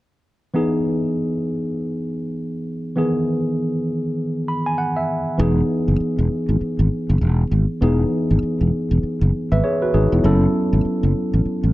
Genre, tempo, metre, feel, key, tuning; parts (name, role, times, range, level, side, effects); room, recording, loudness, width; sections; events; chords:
R&B; 99 BPM; 4/4; swing 60% on 16ths; E major; A4 = 440 Hz
tine electric piano; accompaniment; 0.5-11.7 s; D#3 to B5; -20 LUFS; equal; overdrive
sustaining fretless electric bass; bass; 5.4-11.7 s; E1 to A1; -17 LUFS; equal; analog chorus
light reverb; -18 LUFS; side -17 dB against mid
0.5-5.4 A section; 5.4-11.7 B section
tine electric piano fill 4.2-5.4
0.5 Emaj7; 10.2 F#m7